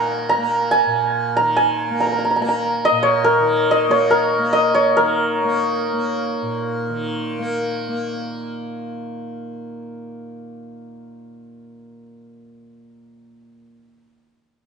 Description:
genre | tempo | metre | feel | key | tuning
indian classical, Hindustani | 142 BPM | 4/4 | straight | Bb raga malkauns | A4 = 440 Hz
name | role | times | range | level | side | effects
santur | melody | 0.0-7.8 s | Bb4 to Bb5 | -17 LUFS | equal | none
tanpura | drone | 0.0-14.1 s | Bb2 to Bb3 | -26 LUFS | equal | none
room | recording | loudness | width
moderate concert hall reverb, RT60 1.9 s | nothing above 10.3 kHz | -16 LUFS | side -5 dB against mid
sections
0.0-5.0 A section; 5.0-8.3 B section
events
speeding up 0.0-8.3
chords
none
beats
0.28 0.71 1.14 | 1.57 2.00 2.43 2.85 | 3.28 3.70 4.12 4.54 | 4.96 5.38 5.80 6.21 | 6.62 7.04 7.45 7.86

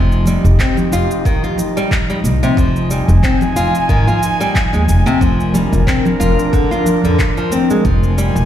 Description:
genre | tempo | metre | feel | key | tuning
organic downtempo | 91 BPM | 4/4 | swing 56% on 16ths | F dorian | A4 = 439 Hz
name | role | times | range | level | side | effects
airy breathy pad | sustained chords | 0.0-8.5 s | F3 to Ab5 | -18 LUFS | equal | chorus, sidechain pumping
nylon-string guitar | arpeggios | 0.0-8.4 s | C3 to F4 | -18 LUFS | left 2 dB | tape echo
upright bass | bass | 0.0-8.5 s | F1 to F2 | -15 LUFS | equal | tube saturation
electronic cabasa and handclaps | drums | 0.1-8.5 s | none | -24 LUFS | equal | none
congas and bongos | percussion | 0.3-8.5 s | none | -23 LUFS | right 2 dB | none
electronic kick drum | drums | 0.6-8.0 s | none | -17 LUFS | equal | none
room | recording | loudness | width
light reverb, studio ambience | played on a big sound system in a bare room, large studio reverb | -12 LUFS | side -11 dB against mid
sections
0.0-8.5 A section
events
none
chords
0.0 Ebadd9/F; 2.6 Fm7; 5.2 Bb/F; 7.8 Fm7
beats
0.60 1.26 1.92 | 2.57 3.23 3.89 4.55 | 5.21 5.87 6.53 7.19 | 7.85

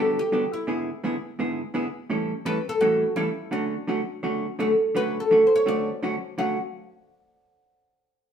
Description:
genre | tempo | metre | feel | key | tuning
country | 168 BPM | 4/4 | swing 64% on 8ths | D major | A4 = 440 Hz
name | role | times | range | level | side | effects
oud | melody | 0.0-6.6 s | D4 to F#5 | -22 LUFS | equal | none
vintage hollow-body jazz guitar | accompaniment | 0.0-6.6 s | G2 to A4 | -27 LUFS | right 2 dB | none
room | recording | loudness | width
wet studio reverb, RT60 0.9 s | band playing live in one room | -22 LUFS | side -8 dB against mid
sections
0.0-5.0 A section; 5.0-6.4 B section; 6.4-7.8 C section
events
none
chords
0.0 Gmaj7; 0.7 E7/G#; 2.1 A7; 3.5 Dmaj7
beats
0.33 | 0.68 1.04 1.39 1.75 | 2.10 2.46 2.82 3.17 | 3.53 3.88 4.24 4.60 | 4.96 5.31 5.67 6.03 | 6.38

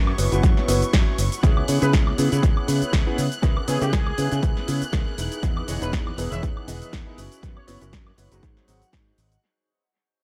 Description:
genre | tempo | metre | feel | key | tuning
filtered disco house | 120 BPM | 4/4 | swing 55% on 16ths | C# dorian | A4 = 442 Hz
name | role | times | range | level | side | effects
rich studio violin section | sustained chords | 0.0-9.4 s | C#6 to F#6 | -39 LUFS | equal | vintage 12-bit sampler grit, sidechain pumping
mellow electric guitar | riff | 0.0-9.4 s | C#4 to F#5 | -36 LUFS | equal | sidechain pumping, dub echo
modern bright fingered electric bass | bass | 0.0-9.4 s | E1 to C#3 | -27 LUFS | equal | sidechain pumping
punchy analog drum machine | drums | 0.1-9.4 s | cabasa, hi-hat, snare drum, woodblock | -33 LUFS | equal | sidechain pumping on hats, sidechain pumping on cymbals, sidechain pumping on perc, dub echo
warm grand piano | accompaniment | 0.2-8.8 s | E3 to D#5 | -32 LUFS | equal | phaser, sidechain pumping, dub echo
electronic kick drum | drums | 0.4-9.0 s | none | -23 LUFS | equal | none
mellow trumpet section | melody | 1.8-7.8 s | G#4 to E5 | -37 LUFS | equal | sidechain pumping, dub echo
room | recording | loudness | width
little or no reverb | echo-heavy mix | -22 LUFS | mono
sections
0.0-9.4 A section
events
drop 0.0-9.4; fade-out 1.4-9.4; clean electric guitar fill 8.4-9.4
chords
0.0 F#7sus4; 1.4 C#m7; 5.2 Emaj7; 7.2 F#7sus4; 8.4 G#7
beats
0.43 0.93 | 1.43 1.93 2.43 2.93 | 3.43 3.93 4.43 4.93 | 5.43 5.93 6.43 6.93 | 7.43 7.93 8.43 8.93

